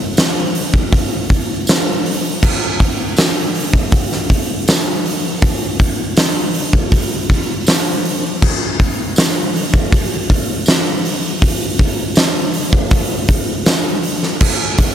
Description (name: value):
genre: rock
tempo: 80 BPM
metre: 4/4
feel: straight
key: none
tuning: none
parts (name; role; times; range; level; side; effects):
- huge arena drum kit; drums; 0.2-14.9 s; crash cymbal, hi-hat, kick drum, snare drum; -13 LUFS; equal; none
- tambourine; percussion; 0.2-13.8 s; none; -30 LUFS; right 2 dB; none
room: moderate huge ambient reverb, RT60 8.3 s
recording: dreamy mix soaked in reverb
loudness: -13 LUFS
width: side -10 dB against mid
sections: 0.0-14.9 A section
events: none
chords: none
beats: 0.16 0.92 1.67 | 2.42 3.17 3.92 4.67 | 5.42 6.17 6.92 7.67 | 8.42 9.17 9.92 10.66 | 11.41 12.16 12.91 13.66 | 14.41